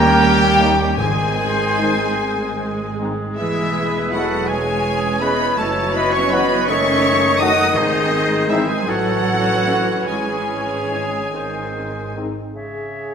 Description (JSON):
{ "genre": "classical", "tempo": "48-57 BPM (dotted quarters)", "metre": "6/8", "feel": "rubato", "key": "C# minor", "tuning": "A4 = 441 Hz", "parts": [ { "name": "rich chamber violin section", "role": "melody", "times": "0.0-12.1 s", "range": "D#5 to D#6", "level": "-24 LUFS", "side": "left 3 dB", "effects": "none" }, { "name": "clear clarinet", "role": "second line", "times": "0.0-13.1 s", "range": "F#4 to A#4", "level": "-29 LUFS", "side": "left 2 dB", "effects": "none" }, { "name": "rich chamber violin section", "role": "second line", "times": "0.0-12.1 s", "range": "D#5 to D#6", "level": "-27 LUFS", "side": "left 2 dB", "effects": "none" }, { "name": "silver concert flute", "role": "second line", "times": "0.0-13.1 s", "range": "G#4 to F#5", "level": "-26 LUFS", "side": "left 2 dB", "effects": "none" }, { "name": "warm oboe", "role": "second line", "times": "0.0-13.1 s", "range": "B4 to D#5", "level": "-28 LUFS", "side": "right 2 dB", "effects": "none" }, { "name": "dark bassoon", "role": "accompaniment", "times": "0.0-13.1 s", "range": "C#3 to E3", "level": "-28 LUFS", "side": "right 1 dB", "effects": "none" }, { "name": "rich studio viola section", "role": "accompaniment", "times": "0.0-12.3 s", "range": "D#3 to E4", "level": "-26 LUFS", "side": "equal", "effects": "none" }, { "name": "warm trumpet section", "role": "stabs", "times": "0.0-12.1 s", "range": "D#4 to D#5", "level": "-22 LUFS", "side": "right 1 dB", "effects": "none" }, { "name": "clear chamber double bass section", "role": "bass", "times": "0.0-12.3 s", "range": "E1 to D#2", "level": "-27 LUFS", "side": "right 3 dB", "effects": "none" }, { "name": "rich chamber cello section", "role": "bass", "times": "0.0-12.1 s", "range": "D#3 to D#4", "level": "-25 LUFS", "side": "right 3 dB", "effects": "none" }, { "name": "dark trombone section", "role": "sustained chords", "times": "0.6-12.3 s", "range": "B2 to A#3", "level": "-30 LUFS", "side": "right 2 dB", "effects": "none" }, { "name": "mellow French horn section", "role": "sustained chords", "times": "0.6-13.1 s", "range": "A3 to G#4", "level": "-28 LUFS", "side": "left 4 dB", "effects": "none" }, { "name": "timpani", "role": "percussion", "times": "1.0-2.2, 7.7-8.8 s", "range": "G#2", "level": "-28 LUFS", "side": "left 2 dB", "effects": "none" } ], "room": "wet scoring stage reverb, RT60 1.6 s", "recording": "none", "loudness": "-16 LUFS", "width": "side -7 dB against mid", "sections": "0.0-12.5 A section", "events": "none", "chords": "0.0 D#7; 1.0 G#; 3.4 E; 4.5 C#m/E; 5.6 F#m7; 6.7 D#dim/F#; 7.7 G#; 8.9 A; 10.1 C#m/G#; 11.3 G#; 12.5 C#m" }